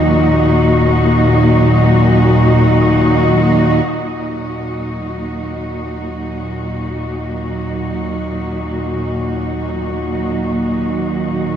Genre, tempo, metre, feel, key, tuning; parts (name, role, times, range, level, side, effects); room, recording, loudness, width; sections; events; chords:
dark ambient drone; free time; Eb minor; A4 = 440 Hz
muted studio cello section; sustained chords; 0.0-11.6 s; Bb2 to Gb4; -15 LUFS; equal; shimmer reverb
analog drone; drone; 0.0-11.6 s; Eb2 to Bb2; -18 LUFS; left 1 dB; chorus
wind-like tuned noise texture; texture; 0.1-3.9 s; Eb5; -32 LUFS; right 1 dB
wet lush hall reverb, RT60 2.7 s; dreamy mix soaked in reverb; -13 LUFS; side -9 dB against mid
0.0-3.9 A section; 3.9-11.6 B section
fade-in on synth drone 3.9-11.6; fade-in on cello section 3.9-11.6
0.0 Ebm